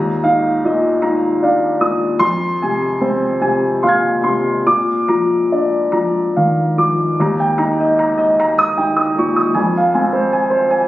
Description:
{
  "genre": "neoclassical minimalist piano",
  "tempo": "49 BPM (dotted quarters)",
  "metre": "6/8",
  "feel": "uneven beats, rubato",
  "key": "Eb mixolydian from 7.2 s",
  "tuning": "A4 = 443 Hz",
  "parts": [
    { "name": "dark upright piano", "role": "solo", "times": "0.0-10.9 s", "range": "Eb2 to Ab6", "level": "-13 LUFS", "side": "equal", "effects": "none" }
  ],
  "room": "moderate studio reverb, RT60 0.7 s",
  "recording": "recorded on a phone in the room, studio reverb",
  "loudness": "-13 LUFS",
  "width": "side -15 dB against mid",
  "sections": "0.0-7.2 A section; 7.2-10.9 B section",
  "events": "none",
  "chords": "0.0 Ebsus2; 2.2 Fm; 4.7 Bb; 7.2 Eb; 9.6 Fm"
}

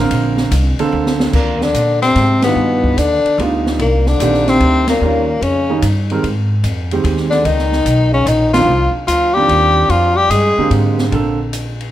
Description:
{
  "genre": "jazz, small-group swing and bop",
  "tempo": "147 BPM",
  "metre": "3/4",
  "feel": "swing 67% on 8ths",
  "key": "Eb major",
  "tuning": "A4 = 440 Hz",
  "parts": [
    { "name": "warm concert grand piano", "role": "accompaniment", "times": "0.0-11.4 s", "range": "D3 to Bb4", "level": "-19 LUFS", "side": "right 4 dB", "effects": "none" },
    { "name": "upright bass", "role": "bass", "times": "0.0-11.9 s", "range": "Bb1 to Bb2", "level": "-17 LUFS", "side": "equal", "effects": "none" },
    { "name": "open jazz drum kit", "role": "drums", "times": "0.1-11.9 s", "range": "crash cymbal, hi-hat, kick drum, ride cymbal, snare drum", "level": "-22 LUFS", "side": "equal", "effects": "none" },
    { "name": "warm tenor saxophone", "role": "melody", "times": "1.3-10.7 s", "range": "Bb3 to Ab4", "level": "-14 LUFS", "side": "left 3 dB", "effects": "none" },
    { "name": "clear trombone", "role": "second line", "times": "1.3-10.7 s", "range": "Bb2 to Ab3", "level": "-22 LUFS", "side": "right 3 dB", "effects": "none" }
  ],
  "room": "moderate large studio reverb, RT60 1.4 s",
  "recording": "none",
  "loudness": "-12 LUFS",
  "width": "side -13 dB against mid",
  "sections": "0.0-1.3 A section; 1.3-11.1 B section",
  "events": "drum fill 0.9-1.3; band accent 2.4, 4.8, 8.5",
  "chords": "0.0 Bbmaj9; 1.3 Ebmaj7(no3); 2.6 G7b13; 3.8 Cm9; 5.0 Eb9; 6.2 Abmaj7; 7.5 Db7; 8.7 Cm11; 9.9 Bb13; 11.1 Bbmaj9"
}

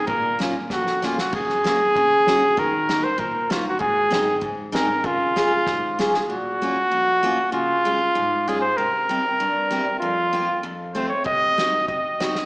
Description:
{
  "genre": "alpine folk, alpine dance band",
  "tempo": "97 BPM",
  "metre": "2/4",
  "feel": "straight",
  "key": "Db major, Bb minor from 6.3 s",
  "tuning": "A4 = 440 Hz",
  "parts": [
    { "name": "clear trumpet", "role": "melody", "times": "0.0-12.5 s", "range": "F4 to Eb5", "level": "-20 LUFS", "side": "equal", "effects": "plate reverb, slapback echo" },
    { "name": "picked steel-string acoustic guitar", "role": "accompaniment", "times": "0.1-12.3 s", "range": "F2 to Ab4", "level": "-26 LUFS", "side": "left 1 dB", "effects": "plate reverb, slapback echo" },
    { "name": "unplugged drum kit", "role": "drums", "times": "0.1-6.3, 11.3-12.5 s", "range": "crash cymbal, kick drum, snare drum", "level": "-29 LUFS", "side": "equal", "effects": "slapback echo" }
  ],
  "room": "moderate club reverb, RT60 0.6 s",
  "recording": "live gig heard through the venue's PA, recital hall reverb, small speaker sound",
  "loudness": "-19 LUFS",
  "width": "side -25 dB against mid",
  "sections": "0.0-6.3 A section; 6.3-12.5 B section",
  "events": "drum fill 0.7-1.3, 5.7-6.3",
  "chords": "0.1 Bbm; 1.3 Gb; 2.6 Ebm; 3.8 Ab; 5.0 Db; 6.3 Bbm; 7.5 Db; 8.8 C7; 10.0 Fsus4; 10.6 F; 11.3 Cdim"
}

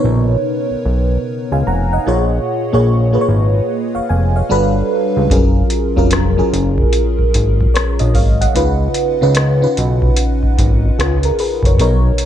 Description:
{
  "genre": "R&B, neo-soul",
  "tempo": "74 BPM",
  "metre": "4/4",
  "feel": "swing 64% on 16ths",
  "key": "unclear",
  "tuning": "A4 = 440 Hz",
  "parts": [
    { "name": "FM electric piano with soft pad layer", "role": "accompaniment", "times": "0.0-12.3 s", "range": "Bb2 to A#5", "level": "-16 LUFS", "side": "equal", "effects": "chorus, phaser" },
    { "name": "fat analog bass", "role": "bass", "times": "0.0-12.1 s", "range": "F1 to C#2", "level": "-15 LUFS", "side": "equal", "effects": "none" },
    { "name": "booming analog drum machine", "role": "drums", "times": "5.3-12.3 s", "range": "hi-hat, kick drum, rim click", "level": "-16 LUFS", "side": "equal", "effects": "none" }
  ],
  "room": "digital ambience",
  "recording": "none",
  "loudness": "-12 LUFS",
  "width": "side -10 dB against mid",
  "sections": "0.0-12.3 A section",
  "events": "none",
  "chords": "0.0 Bmaj9; 4.5 Gmaj7; 5.3 Gbmaj7; 8.5 Db7"
}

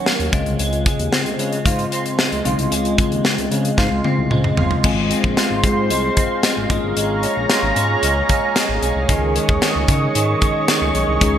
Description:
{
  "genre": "1980s-style pop",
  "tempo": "113 BPM",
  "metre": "4/4",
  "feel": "straight",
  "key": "unclear",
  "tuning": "A4 = 441 Hz",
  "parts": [
    { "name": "bell-like tine electric piano", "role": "accompaniment", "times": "0.0-11.4 s", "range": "Db3 to Ab4", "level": "-23 LUFS", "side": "left 3 dB", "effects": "phaser" },
    { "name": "electric guitar at the edge of break-up", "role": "riff", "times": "0.0-11.4 s", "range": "Eb3 to Gb4", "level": "-23 LUFS", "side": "right 2 dB", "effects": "analog chorus, digital delay" },
    { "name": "modern studio drum kit", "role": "drums", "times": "0.1-11.3 s", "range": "crash cymbal, hi-hat, kick drum, snare drum, toms", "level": "-19 LUFS", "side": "equal", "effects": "gated reverb" },
    { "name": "smooth synth bass", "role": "bass", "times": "0.2-11.4 s", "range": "G1 to Db3", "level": "-23 LUFS", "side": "equal", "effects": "none" },
    { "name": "lush unison pad", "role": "sustained chords", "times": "4.8-11.4 s", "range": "Ab4 to Db6", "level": "-21 LUFS", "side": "right 1 dB", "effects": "chorus" }
  ],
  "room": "moderate plate reverb, RT60 1.8 s, studio reverb",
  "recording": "bright 1980s-style digital production",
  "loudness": "-15 LUFS",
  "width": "side -10 dB against mid",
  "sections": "0.0-4.8 A section; 4.8-11.4 B section",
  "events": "drum fill 3.8-4.8",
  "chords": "0.3 Dbmaj7; 4.8 Fm/Ab; 6.7 Bbm7; 9.1 Dbsus2"
}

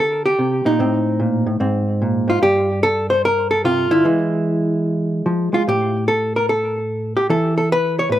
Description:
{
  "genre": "solo jazz",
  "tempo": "148 BPM",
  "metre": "4/4",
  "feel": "swing 66% on 8ths",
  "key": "unclear",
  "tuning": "A4 = 440 Hz",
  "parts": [
    { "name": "hollow-body jazz guitar", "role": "solo", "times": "0.0-8.2 s", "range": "G2 to C#5", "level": "-16 LUFS", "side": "equal", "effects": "slapback echo" }
  ],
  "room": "light reverb",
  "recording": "recorded outdoors, with no room sound",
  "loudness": "-16 LUFS",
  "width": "side -12 dB against mid",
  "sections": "0.0-8.2 A section",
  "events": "none",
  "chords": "0.0 D7(no3); 0.8 Adim; 1.6 G#add9; 2.4 Gsus2; 4.0 E; 5.7 N.C."
}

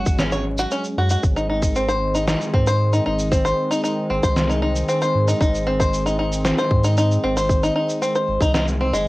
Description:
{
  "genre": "folktronica",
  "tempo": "115 BPM",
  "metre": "4/4",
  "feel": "straight",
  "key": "unclear",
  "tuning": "A4 = 440 Hz",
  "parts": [
    { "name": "warm analog pad", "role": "sustained chords", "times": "0.0-9.1 s", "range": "Eb3 to Db4", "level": "-26 LUFS", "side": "equal", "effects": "chorus, cassette tape" },
    { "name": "bluegrass banjo", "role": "arpeggios", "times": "0.0-9.1 s", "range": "Ab3 to Db5", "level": "-21 LUFS", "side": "equal", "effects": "cassette tape, tape echo" },
    { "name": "warm sub bass", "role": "bass", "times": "0.0-9.1 s", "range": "Gb1 to Ab2", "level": "-23 LUFS", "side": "equal", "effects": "none" },
    { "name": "electronic kick drum", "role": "drums", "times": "0.1-8.5 s", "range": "none", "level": "-19 LUFS", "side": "equal", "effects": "none" },
    { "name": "electronic shaker and snare drum", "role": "drums", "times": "0.1-9.0 s", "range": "none", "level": "-27 LUFS", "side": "equal", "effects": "none" }
  ],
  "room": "light reverb",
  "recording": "home recording on cassette, vinyl crackle",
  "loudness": "-17 LUFS",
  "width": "side -19 dB against mid",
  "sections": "0.0-9.1 A section",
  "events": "none",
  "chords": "0.0 Gbsus2; 1.2 Ab"
}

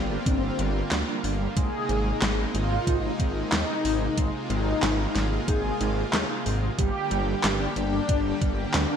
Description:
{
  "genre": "synthwave",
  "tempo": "92 BPM",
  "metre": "4/4",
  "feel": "straight",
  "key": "unclear",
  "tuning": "A4 = 442 Hz",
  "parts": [
    { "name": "mellow synth brass", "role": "melody", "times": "0.0-9.0 s", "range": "C4 to Ab4", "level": "-30 LUFS", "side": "left 2 dB", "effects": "chorus, cassette tape, ping-pong delay" },
    { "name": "lush unison pad", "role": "sustained chords", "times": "0.0-9.0 s", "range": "C3 to G4", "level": "-31 LUFS", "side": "equal", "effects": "chorus, sidechain pumping" },
    { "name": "wide detuned saw bass", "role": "bass", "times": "0.0-8.9 s", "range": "G1 to Eb2", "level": "-28 LUFS", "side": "equal", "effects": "chorus, sidechain pumping" },
    { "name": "mellow electric guitar", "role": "riff", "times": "0.1-9.0 s", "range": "G3 to Eb4", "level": "-36 LUFS", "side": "right 5 dB", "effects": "lush chorus, ping-pong delay" },
    { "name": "electronic kick drum", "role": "drums", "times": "0.3-8.5 s", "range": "none", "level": "-26 LUFS", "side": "equal", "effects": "none" },
    { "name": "pop drum kit", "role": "drums", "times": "0.3-8.9 s", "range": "handclaps, hi-hat, snare drum", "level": "-28 LUFS", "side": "equal", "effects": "gated reverb" }
  ],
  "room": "light reverb, digital ambience",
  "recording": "bright 1980s-style digital production",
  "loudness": "-23 LUFS",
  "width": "side -8 dB against mid",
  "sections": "0.0-9.0 A section",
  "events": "none",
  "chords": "0.0 Gm; 1.6 Abadd9; 6.8 Gm"
}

